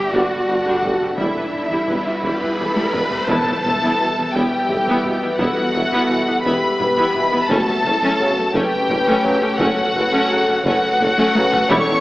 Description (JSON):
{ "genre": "cinematic, hybrid orchestral and electronic film score", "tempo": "57 BPM (dotted quarters)", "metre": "6/8", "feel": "straight", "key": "E dorian", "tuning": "A4 = 440 Hz", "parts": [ { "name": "warm symphonic violin section", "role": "melody", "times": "0.0-12.0 s", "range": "D5 to C#6", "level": "-21 LUFS", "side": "left 1 dB", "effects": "none" }, { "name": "warm symphonic violin section", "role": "second line", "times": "0.0-12.0 s", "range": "F#4 to G5", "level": "-25 LUFS", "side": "left 1 dB", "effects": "none" }, { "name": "warm symphonic viola section", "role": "accompaniment", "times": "0.0-12.0 s", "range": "G3 to B4", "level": "-23 LUFS", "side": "equal", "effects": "none" }, { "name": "evolving wavetable pad", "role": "sustained chords", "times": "0.0-12.0 s", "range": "G3 to E5", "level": "-26 LUFS", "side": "equal", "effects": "chorus, built-in reverb" }, { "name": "dark symphonic cello section", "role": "bass", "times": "0.0-12.0 s", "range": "E2 to G4", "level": "-26 LUFS", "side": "right 1 dB", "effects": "none" }, { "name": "sub bass with octave", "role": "bass", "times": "0.0-12.0 s", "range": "E1 to G1", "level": "-45 LUFS", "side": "equal", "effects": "none" }, { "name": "riser and impact", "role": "sound effects", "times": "1.1-5.4 s", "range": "none", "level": "-29 LUFS", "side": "equal", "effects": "none" }, { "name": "mellow tuba", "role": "bass", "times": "0.1-11.8 s", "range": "E1 to G1", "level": "-26 LUFS", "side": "right 1 dB", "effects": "none" }, { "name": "warm symphonic double bass section", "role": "bass", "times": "0.1-11.8 s", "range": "E1 to G2", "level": "-34 LUFS", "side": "right 1 dB", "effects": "none" }, { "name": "taiko ensemble", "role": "drums", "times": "0.1-12.0 s", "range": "none", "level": "-28 LUFS", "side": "equal", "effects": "none" }, { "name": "dark French horn section", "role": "sustained chords", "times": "0.8-12.0 s", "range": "A3 to B4", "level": "-24 LUFS", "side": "left 2 dB", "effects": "none" }, { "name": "dark trombone section", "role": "sustained chords", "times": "0.8-11.5 s", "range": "B2 to G3", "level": "-27 LUFS", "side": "right 1 dB", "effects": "none" } ], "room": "wet scoring stage reverb, RT60 1.5 s", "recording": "AM radio sound, faint mains hum", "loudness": "-16 LUFS", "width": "side -17 dB against mid", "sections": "0.0-3.3 A section; 3.3-12.0 B section", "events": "riser 1.1-3.3; drum fill 2.8-3.3, 11.2-11.7; impact 3.3-5.4", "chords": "0.0 Gsus2; 1.2 Em; 7.5 F#m" }